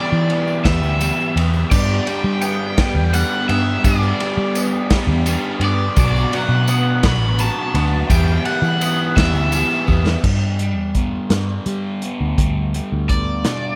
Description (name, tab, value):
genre	indie rock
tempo	56 BPM (dotted quarters)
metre	6/8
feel	straight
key	G major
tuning	A4 = 441 Hz
part	crunchy overdriven guitar	melody	0.0-13.8 s	D5 to B5	-26 LUFS	equal	spring reverb, tape echo
part	tonewheel organ	sustained chords	0.0-10.2 s	F#4 to B5	-38 LUFS	equal	none
part	crunchy overdriven guitar	riff	0.0-13.8 s	B2 to G4	-26 LUFS	equal	phaser, tape echo
part	overdriven electric guitar	riff	0.0-10.2 s	F#3 to B3	-29 LUFS	equal	ensemble chorus, tape echo
part	picked electric bass	bass	0.1-13.7 s	A1 to G3	-21 LUFS	equal	none
part	vintage drum kit	drums	0.3-13.6 s	crash cymbal, hi-hat, kick drum, ride cymbal, snare drum	-24 LUFS	equal	none
part	tambourine	percussion	0.5-10.0 s	none	-37 LUFS	equal	tape echo
room	small room ambience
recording	echo-heavy mix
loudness	-18 LUFS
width	mono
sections	0.0-10.2 A section; 10.2-13.8 B section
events	drum fill 9.9-10.2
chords	0.0 Em; 1.7 G; 6.0 Bm; 8.1 Em